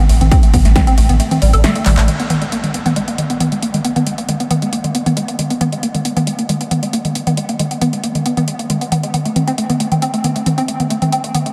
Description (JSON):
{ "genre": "driving peak-time techno", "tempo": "136 BPM", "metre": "4/4", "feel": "straight", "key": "unclear", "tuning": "A4 = 440 Hz", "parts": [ { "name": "woody wave-folded pluck", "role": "riff", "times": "0.0-11.5 s", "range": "G3 to A4", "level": "-21 LUFS", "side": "equal", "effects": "overdrive, ensemble chorus, sidechain pumping, diffuse ambient delay" }, { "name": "saturated sub bass", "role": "bass", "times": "0.1-2.1 s", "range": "A1", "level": "-17 LUFS", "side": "equal", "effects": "tube saturation, sidechain pumping, low-pass filter" }, { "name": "techno drum kit", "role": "drums", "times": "0.1-11.5 s", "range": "handclaps, hi-hat, ride cymbal, snare drum, toms", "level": "-20 LUFS", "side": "equal", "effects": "overdrive" }, { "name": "electronic kick drum", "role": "drums", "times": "0.3-0.8 s", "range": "none", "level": "-13 LUFS", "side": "equal", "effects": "overdrive" } ], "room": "moderate huge ambient reverb, RT60 7.2 s", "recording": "dreamy mix soaked in reverb", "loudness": "-16 LUFS", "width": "mono", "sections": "0.0-2.1 A section; 2.1-11.5 B section", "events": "drop 0.0-2.1; kick drops out 1.2-2.1; drum fill 1.9; band accent 2.0", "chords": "0.0 Am; 2.1 G#m; 9.1 Am", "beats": "| 0.32 0.76 1.20 1.64 | 2.08 2.52 2.96 3.40 | 3.85 4.29 4.73 5.17 | 5.61 6.05 6.49 6.93 | 7.37 7.82 8.26 8.70 | 9.14 9.58 10.02 10.46 | 10.90 11.35" }